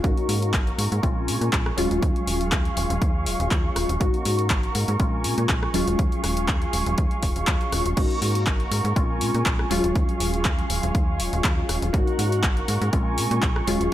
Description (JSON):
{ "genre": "filtered disco house", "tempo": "121 BPM", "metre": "4/4", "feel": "swing 54% on 16ths", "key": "Eb dorian", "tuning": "A4 = 438 Hz", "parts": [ { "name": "funky polysynth comp", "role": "accompaniment", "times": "0.0-13.9 s", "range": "Gb3 to Gb4", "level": "-27 LUFS", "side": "left 2 dB", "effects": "chorus, phaser, sidechain pumping, low-pass filter" }, { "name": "muted chamber string section", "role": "sustained chords", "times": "0.0-13.9 s", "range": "Ab4 to Db6", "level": "-30 LUFS", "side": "right 3 dB", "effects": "sidechain pumping, low-pass filter" }, { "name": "slap-like FM bass", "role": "bass", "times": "0.0-13.9 s", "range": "Eb1 to Bb2", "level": "-26 LUFS", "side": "equal", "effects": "sidechain pumping, low-pass filter" }, { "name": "electronic kick drum", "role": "drums", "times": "0.0-13.5 s", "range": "none", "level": "-23 LUFS", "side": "equal", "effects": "overdrive" }, { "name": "punchy analog drum machine", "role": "drums", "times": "0.0-13.9 s", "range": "crash cymbal, handclaps, hi-hat, rim click", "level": "-28 LUFS", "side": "left 1 dB", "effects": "overdrive, sidechain pumping on hats, sidechain pumping on cymbals" }, { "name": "tube shaker", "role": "percussion", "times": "8.0-13.9 s", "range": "none", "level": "barely audible", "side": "none", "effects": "none" } ], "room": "little or no reverb", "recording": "none", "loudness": "-20 LUFS", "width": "side -13 dB against mid", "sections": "0.0-13.9 A section", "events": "none", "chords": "0.0 Ab9sus4; 1.0 Bbm7; 1.8 Ebm11; 4.0 Ab9sus4; 5.0 Bbm7; 5.7 Ebm11; 8.0 Ab9sus4; 9.0 Bbm7; 9.7 Ebm11; 11.9 Ab9sus4; 12.9 Bbm7" }